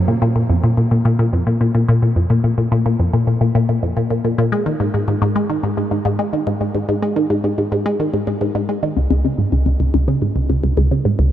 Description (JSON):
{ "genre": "ambient", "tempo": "108 BPM", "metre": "4/4", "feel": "straight", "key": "unclear", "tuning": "A4 = 440 Hz", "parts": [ { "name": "resonant blip pluck", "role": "solo", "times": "0.0-11.3 s", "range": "C#2 to Ab3", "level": "-15 LUFS", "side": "equal", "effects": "phaser, tape echo" } ], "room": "moderate huge ambient reverb, RT60 7.9 s", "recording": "none", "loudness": "-15 LUFS", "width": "side -11 dB against mid", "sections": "0.0-9.0 A section; 9.0-11.3 B section", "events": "none", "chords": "none" }